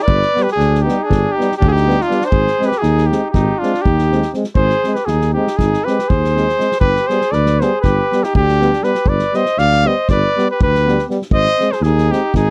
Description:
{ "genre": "balkan folk, Balkan brass band", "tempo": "240 BPM (eighths)", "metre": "9/8", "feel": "straight", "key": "G phrygian dominant", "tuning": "A4 = 440 Hz", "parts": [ { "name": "clear trumpet", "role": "melody", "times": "0.0-12.5 s", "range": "F4 to F5", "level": "-19 LUFS", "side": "equal", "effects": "none" }, { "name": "clear flugelhorn", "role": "second line", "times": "0.0-12.5 s", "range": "D4 to D5", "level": "-26 LUFS", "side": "equal", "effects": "none" }, { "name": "dark tuba", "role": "bass", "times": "0.1-12.5 s", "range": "G1 to Eb2", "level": "-19 LUFS", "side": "equal", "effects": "none" }, { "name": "natural country drum kit", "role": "percussion", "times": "0.1-12.5 s", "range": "kick drum, snare drum", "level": "-22 LUFS", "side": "equal", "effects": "none" }, { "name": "clear euphonium", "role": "accompaniment", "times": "0.3-12.2 s", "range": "B3 to C4", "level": "-24 LUFS", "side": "equal", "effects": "none" }, { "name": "clear trombone", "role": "accompaniment", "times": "0.4-12.2 s", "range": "G3 to Ab3", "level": "-24 LUFS", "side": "equal", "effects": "none" } ], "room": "little or no reverb", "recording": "dry, close 1970s-style studio recording", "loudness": "-15 LUFS", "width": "mono", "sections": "0.0-12.5 A section", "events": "none", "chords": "0.0 G; 2.3 Ab; 6.8 G; 11.3 Ab", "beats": "| 0.07 0.32 0.57 0.82 1.07 1.32 1.57 1.82 2.06 | 2.31 2.56 2.81 3.06 3.31 3.56 3.81 4.06 4.31 | 4.56 4.81 5.06 5.31 5.56 5.81 6.06 6.31 6.56 | 6.81 7.06 7.31 7.56 7.80 8.05 8.30 8.55 8.80 | 9.05 9.30 9.55 9.80 10.05 10.30 10.55 10.80 11.05 | 11.30 11.55 11.80 12.05 12.30" }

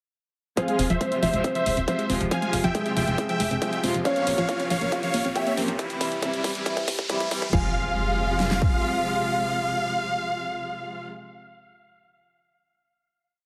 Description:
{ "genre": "uplifting trance", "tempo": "138 BPM", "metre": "4/4", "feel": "straight", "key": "F harmonic minor", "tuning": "A4 = 440 Hz", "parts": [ { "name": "dense compressed supersaw", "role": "melody", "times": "0.6-11.1 s", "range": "Ab4 to Ab5", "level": "-31 LUFS", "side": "equal", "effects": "sidechain pumping, low-pass filter, dub echo" }, { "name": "dark grand piano", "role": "second line", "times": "0.6-11.1 s", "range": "Ab3 to Ab5", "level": "-34 LUFS", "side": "equal", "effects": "tape echo" }, { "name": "plucky unison lead", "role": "second line", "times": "0.6-11.1 s", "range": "E5 to Ab5", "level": "-36 LUFS", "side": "equal", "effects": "none" }, { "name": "rich studio string section", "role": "sustained chords", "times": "0.6-11.1 s", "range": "C3 to F4", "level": "-32 LUFS", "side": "equal", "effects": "sidechain pumping" }, { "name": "unison pluck", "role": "arpeggios", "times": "0.6-7.7 s", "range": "F3 to C4", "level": "-32 LUFS", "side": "equal", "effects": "sidechain pumping, dub echo" }, { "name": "big-room dance drum kit", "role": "drums", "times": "0.6-8.7 s", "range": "kick drum, snare drum", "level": "-29 LUFS", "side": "equal", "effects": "high-pass filter on kick, high-pass filter on snare, high-pass filter on room" }, { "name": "punchy analog drum machine", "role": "drums", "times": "0.6-7.6 s", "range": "crash cymbal, hi-hat", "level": "-36 LUFS", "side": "equal", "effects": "sidechain pumping on hats, sidechain pumping on cymbals" }, { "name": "riser and impact", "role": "sound effects", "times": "2.9-11.1 s", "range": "none", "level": "-39 LUFS", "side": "equal", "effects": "none" }, { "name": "tight sequencer bass", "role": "bass", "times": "0.8-8.8 s", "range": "F1 to Bb1", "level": "-33 LUFS", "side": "equal", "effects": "sidechain pumping" } ], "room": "moderate concert hall reverb, RT60 1.8 s", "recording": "heavily compressed radio sound, high-pass filter", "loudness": "-25 LUFS", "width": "mono", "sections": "0.6-7.5 build; 7.5-11.0 final chord", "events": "build-up 0.6-7.5; filter sweep on digital synth lead 0.6-5.8; filter sweep 0.6-7.5; riser 2.9-7.5; drum fill 4.1-7.5", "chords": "0.6 Fm; 4.1 Bbmadd9; 5.8 C; 7.5 Fm", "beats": "| 0.57 1.01 1.44 1.88 | 2.31 2.75 3.18 3.62 | 4.05 4.49 4.92 5.36 | 5.79 6.23 6.66 7.10 | 7.53 7.97 8.40 8.84 | 9.27 9.71 10.14 10.57" }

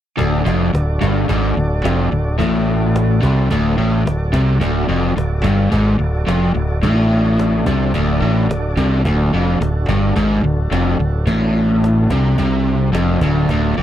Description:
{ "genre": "classic rock", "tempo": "108 BPM", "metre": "4/4", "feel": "straight", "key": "D major", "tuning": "A4 = 442 Hz", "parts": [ { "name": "tonewheel organ", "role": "sustained chords", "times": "0.2-13.8 s", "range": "D4 to D5", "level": "-26 LUFS", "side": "right 1 dB", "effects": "slow rotary speaker, overdrive" }, { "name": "overdriven electric guitar", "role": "riff", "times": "0.2-13.8 s", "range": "D2 to C3", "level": "-17 LUFS", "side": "equal", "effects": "none" }, { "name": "growling fingered electric bass", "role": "bass", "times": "0.2-13.8 s", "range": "D1 to C2", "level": "-18 LUFS", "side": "equal", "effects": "overdrive" }, { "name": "cajon", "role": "drums", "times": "0.2-13.8 s", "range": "none", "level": "-24 LUFS", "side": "equal", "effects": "none" } ], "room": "little or no reverb", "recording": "dry, close 1970s-style studio recording", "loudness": "-14 LUFS", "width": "side -11 dB against mid", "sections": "0.2-13.8 A section", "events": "none", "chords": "0.2 D", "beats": "| 0.19 0.74 1.29 1.84 | 2.40 2.95 3.50 4.06 | 4.61 5.17 5.72 6.28 | 6.83 7.38 7.94 8.49 | 9.05 9.60 10.16 10.71 | 11.27 11.82 12.38 12.93 | 13.49" }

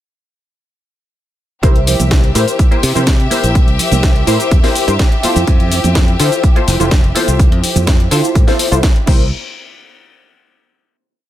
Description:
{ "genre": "filtered disco house", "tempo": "125 BPM", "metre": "4/4", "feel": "straight", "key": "C mixolydian", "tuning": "A4 = 441 Hz", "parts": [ { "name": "funky polysynth comp", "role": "accompaniment", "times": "1.6-9.3 s", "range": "E4 to C5", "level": "-18 LUFS", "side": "equal", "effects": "chorus, phaser, cassette tape, sidechain pumping" }, { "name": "bright studio string section", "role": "sustained chords", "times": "1.6-9.1 s", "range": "G4 to E5", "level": "-22 LUFS", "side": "left 2 dB", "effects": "sidechain pumping" }, { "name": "modern bright fingered electric bass", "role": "bass", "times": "1.6-9.3 s", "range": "F1 to D3", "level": "-16 LUFS", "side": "equal", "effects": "sidechain pumping" }, { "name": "electronic kick drum", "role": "drums", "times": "1.6-9.2 s", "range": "none", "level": "-11 LUFS", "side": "equal", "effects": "none" }, { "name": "house drum kit", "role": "drums", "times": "1.6-9.2 s", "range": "crash cymbal, hi-hat, shaker, snare drum", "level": "-20 LUFS", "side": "left 1 dB", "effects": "sidechain pumping on hats, sidechain pumping on perc, sidechain pumping on cymbals" }, { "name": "maracas and congas", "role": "percussion", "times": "1.6-9.3 s", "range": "none", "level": "-24 LUFS", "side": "right 4 dB", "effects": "sidechain pumping on perc" } ], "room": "digital ambience", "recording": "none", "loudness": "-10 LUFS", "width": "side -13 dB against mid", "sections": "1.6-9.3 drop; 9.3-11.2 final hit", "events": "drop 1.6-9.3", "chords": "1.6 C7; 5.2 Fmaj7; 9.1 C7; 9.3 N.C.", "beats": "| 1.63 2.11 2.59 3.07 | 3.55 4.03 4.51 4.99 | 5.47 5.95 6.43 6.91 | 7.39 7.87 8.35 8.83" }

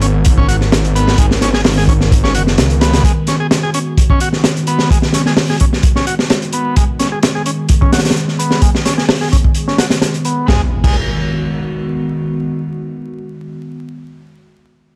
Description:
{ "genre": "breakbeat, breaks", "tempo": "129 BPM", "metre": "4/4", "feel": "straight", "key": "G# minor", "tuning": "A4 = 438 Hz", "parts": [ { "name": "warbly tape-like pad", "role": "sustained chords", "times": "0.0-13.5 s", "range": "D#3 to A#4", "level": "-22 LUFS", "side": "equal", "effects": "chorus, built-in reverb, vintage 12-bit sampler grit, sidechain pumping" }, { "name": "overdriven combo organ", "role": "riff", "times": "0.0-11.0 s", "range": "G#3 to G#4", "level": "-23 LUFS", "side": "equal", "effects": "tube saturation, low-pass filter, digital delay" }, { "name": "detuned saw bass", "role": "bass", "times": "0.0-3.0 s", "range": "F#1 to C#2", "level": "-17 LUFS", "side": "equal", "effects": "none" }, { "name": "crunchy breakbeat drum kit", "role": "drums", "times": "0.0-11.0 s", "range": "crash cymbal, hi-hat, kick drum, snare drum", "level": "-15 LUFS", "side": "equal", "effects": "none" }, { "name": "impact", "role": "sound effects", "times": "10.5-13.5 s", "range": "none", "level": "-25 LUFS", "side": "equal", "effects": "none" } ], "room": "small room ambience", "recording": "vinyl crackle", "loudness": "-14 LUFS", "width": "mono", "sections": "0.0-10.5 A section; 10.5-14.2 B section", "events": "filter sweep on transistor combo organ 0.0-10.5", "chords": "0.0 G#m7", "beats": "0.25 0.72 | 1.18 1.65 2.11 2.58 | 3.04 3.51 3.97 4.44 | 4.90 5.37 5.83 6.30 | 6.76 7.23 7.69 8.16 | 8.62 9.09 9.55 10.02 | 10.48 10.95 11.41 11.88 | 12.35 12.81 13.28" }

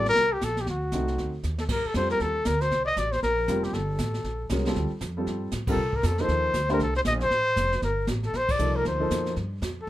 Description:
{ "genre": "jazz, small-group swing and bop", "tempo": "235 BPM", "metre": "4/4", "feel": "swing 60% on 8ths", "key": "G minor", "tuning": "A4 = 439 Hz", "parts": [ { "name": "mellow trumpet", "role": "melody", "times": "0.0-9.9 s", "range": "F#4 to Eb5", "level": "-26 LUFS", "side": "left 1 dB", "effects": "none" }, { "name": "warm baby grand piano", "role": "accompaniment", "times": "0.0-9.3 s", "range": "F3 to C5", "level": "-30 LUFS", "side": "equal", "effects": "none" }, { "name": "upright bass", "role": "bass", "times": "0.0-9.9 s", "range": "F1 to C3", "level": "-29 LUFS", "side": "equal", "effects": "none" }, { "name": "jazz brush drum kit", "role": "drums", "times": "0.1-9.9 s", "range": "brushed snare drum, crash cymbal, hi-hat, kick drum, snare drum", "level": "-33 LUFS", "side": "right 1 dB", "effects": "none" } ], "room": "moderate club reverb, RT60 0.5 s", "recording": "minimal, uncompressed stereo recording", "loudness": "-24 LUFS", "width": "side -14 dB against mid", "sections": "0.0-1.7 A section; 1.7-9.9 A section", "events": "drum fill 1.4; band accent 5.7, 8.5", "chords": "0.2 Gmadd11; 0.7 D7b9; 1.7 Gsus2; 2.7 C5; 3.7 Gm9; 5.8 Cm9; 7.8 Gm9", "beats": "0.16 0.41 | 0.67 0.93 1.18 1.44 | 1.69 1.95 2.20 2.46 | 2.71 2.97 3.23 3.48 | 3.74 3.99 4.25 4.50 | 4.76 5.01 5.27 5.52 | 5.78 6.04 6.29 6.55 | 6.80 7.06 7.31 7.57 | 7.82 8.08 8.33 8.59 | 8.85 9.10 9.36 9.61 | 9.87" }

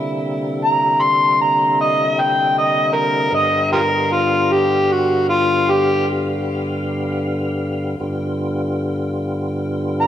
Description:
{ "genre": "blues", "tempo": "51 BPM (dotted quarters)", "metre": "12/8", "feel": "straight", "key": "unclear", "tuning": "A4 = 439 Hz", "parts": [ { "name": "tonewheel organ", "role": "sustained chords", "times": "0.0-10.1 s", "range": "G2 to F5", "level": "-21 LUFS", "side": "equal", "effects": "overdrive, chorus vibrato, slow rotary speaker" }, { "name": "overdriven harmonica", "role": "melody", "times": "0.6-10.1 s", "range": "F4 to C6", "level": "-16 LUFS", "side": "equal", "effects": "tape echo" } ], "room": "wet stone room reverb, RT60 1.2 s", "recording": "band playing live in one room", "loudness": "-16 LUFS", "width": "side -10 dB against mid", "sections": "0.0-10.1 A section", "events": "harmonica solo 0.0-10.1", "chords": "0.0 C9; 3.3 G7", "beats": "0.99 2.16 | 3.33 4.50 5.67 6.84 | 8.01 9.18" }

